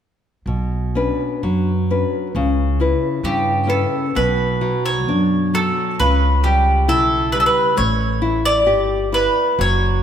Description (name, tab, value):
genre	fado-style ballad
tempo	66 BPM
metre	2/4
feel	rubato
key	B minor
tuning	A4 = 440 Hz
part	nylon-string guitar	accompaniment	0.5-10.0 s	B2 to B4	-21 LUFS	left 4 dB	none
part	upright bass	bass	0.5-10.0 s	F#1 to G2	-20 LUFS	right 1 dB	none
part	bowl-back mandolin	melody	3.2-10.0 s	G4 to D5	-18 LUFS	right 1 dB	none
room	moderate concert hall reverb, RT60 2.3 s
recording	none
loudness	-15 LUFS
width	side -9 dB against mid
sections	0.5-4.2 A section; 4.2-10.0 B section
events	none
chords	0.5 Bmadd9; 2.3 C#m7b5; 4.2 Bm; 6.0 C#m7b5; 7.8 A5